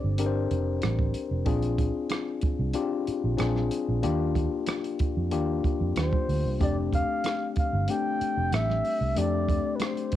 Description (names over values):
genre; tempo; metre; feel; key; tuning
lush 1970s-style soul; 94 BPM; 4/4; straight; F major; A4 = 440 Hz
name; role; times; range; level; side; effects
breathy flugelhorn; melody; 0.0-0.2, 6.0-10.2 s; B4 to G5; -30 LUFS; equal; analog delay
tine electric piano; accompaniment; 0.0-10.2 s; A3 to C5; -29 LUFS; left 6 dB; auto-pan, cassette tape
vintage muted fingered electric bass; bass; 0.0-10.2 s; F1 to F2; -28 LUFS; right 2 dB; none
compact cocktail drum kit; drums; 0.2-10.2 s; hi-hat, kick drum, rim click; -30 LUFS; right 2 dB; cassette tape
congas; percussion; 0.2-9.9 s; none; -38 LUFS; right 16 dB; none
room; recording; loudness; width
light reverb; home recording on cassette; -25 LUFS; side -12 dB against mid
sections
0.0-10.2 A section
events
none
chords
0.0 F6; 1.5 Bb7; 4.0 Ebmaj7; 6.6 F6